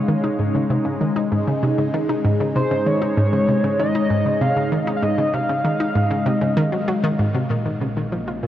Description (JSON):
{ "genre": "ambient, sequencer-driven space music", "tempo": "97 BPM", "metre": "4/4", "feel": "straight", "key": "unclear", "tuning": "A4 = 440 Hz", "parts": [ { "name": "phased analog pad", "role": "sustained chords", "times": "0.0-8.5 s", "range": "Bb2 to F4", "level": "-22 LUFS", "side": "left 1 dB", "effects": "phaser, chorus" }, { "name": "analog pluck", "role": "riff", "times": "0.0-8.5 s", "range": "Ab2 to F4", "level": "-21 LUFS", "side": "equal", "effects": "chorus, ping-pong delay" }, { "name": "pulse-width lead", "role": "melody", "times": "2.6-6.9 s", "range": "C5 to F5", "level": "-24 LUFS", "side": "equal", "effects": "chorus, ping-pong delay" }, { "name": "fat analog bass", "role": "bass", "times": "7.5-8.5 s", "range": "Bb1", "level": "-46 LUFS", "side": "equal", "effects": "none" } ], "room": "wet huge ambient reverb, RT60 7.1 s", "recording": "worn, warbling old tape, cassette tape, warbly pitch drift", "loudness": "-18 LUFS", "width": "side -12 dB against mid", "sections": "0.0-7.5 A section", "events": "filter sweep on synth arpeggio sound 0.0-7.5", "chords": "0.0 Absus4; 7.5 Bbm" }